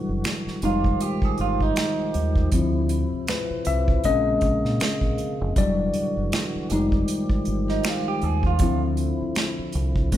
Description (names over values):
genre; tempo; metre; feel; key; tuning
R&B, neo-soul; 79 BPM; 4/4; swing 58% on 16ths; unclear; A4 = 445 Hz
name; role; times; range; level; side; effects
tine electric piano; accompaniment; 0.0-10.2 s; F3 to E5; -25 LUFS; left 3 dB; overdrive, phaser
tonewheel organ; sustained chords; 0.0-10.2 s; C3 to G4; -31 LUFS; right 2 dB; slow rotary speaker, overdrive, chorus vibrato
deep dub fingered electric bass; bass; 0.1-10.2 s; E1 to Bb2; -26 LUFS; equal; none
unplugged drum kit; drums; 0.2-10.2 s; finger snaps, hi-hat, kick drum, snare drum; -25 LUFS; right 1 dB; none
electric guitar through a small old amp; second line; 0.7-2.5, 7.7-8.8 s; Eb4 to Ab4; -28 LUFS; right 8 dB; none
room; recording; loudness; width
moderate recital hall reverb, RT60 1.7 s; recorded in a church or concert hall; -21 LUFS; side -12 dB against mid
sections
0.0-10.2 A section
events
tine electric piano solo 0.0-10.2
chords
0.0 Em9; 0.6 Fm9; 2.5 Dm9; 4.0 Bbm9; 5.6 Em9; 6.7 Fm9; 8.6 Dm9